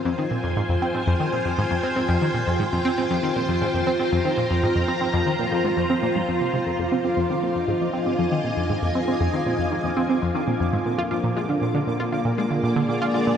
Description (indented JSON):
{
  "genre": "ambient, sequencer-driven space music",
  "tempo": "118 BPM",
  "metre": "4/4",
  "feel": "straight",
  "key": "unclear",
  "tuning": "A4 = 440 Hz",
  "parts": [
    { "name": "string machine, full ensemble", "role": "sustained chords", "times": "0.0-13.4 s", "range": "Bb3 to Bb5", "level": "-24 LUFS", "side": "equal", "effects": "ensemble chorus, shimmer reverb" },
    { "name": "tight sequenced synth", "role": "riff", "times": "0.1-13.3 s", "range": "F2 to F4", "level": "-24 LUFS", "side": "equal", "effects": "chorus, phaser, tape echo" },
    { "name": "pulsing gated texture", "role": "texture", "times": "6.8-13.4 s", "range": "D3 to D6", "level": "-33 LUFS", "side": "left 2 dB", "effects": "chorus, built-in reverb, shimmer reverb" }
  ],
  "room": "wet huge ambient reverb, RT60 7.7 s",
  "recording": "none",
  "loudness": "-20 LUFS",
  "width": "side -8 dB against mid",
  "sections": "0.0-6.8 A section; 6.8-13.4 B section",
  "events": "none",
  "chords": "0.0 Fmadd9; 6.8 Fm7; 10.9 Bb7"
}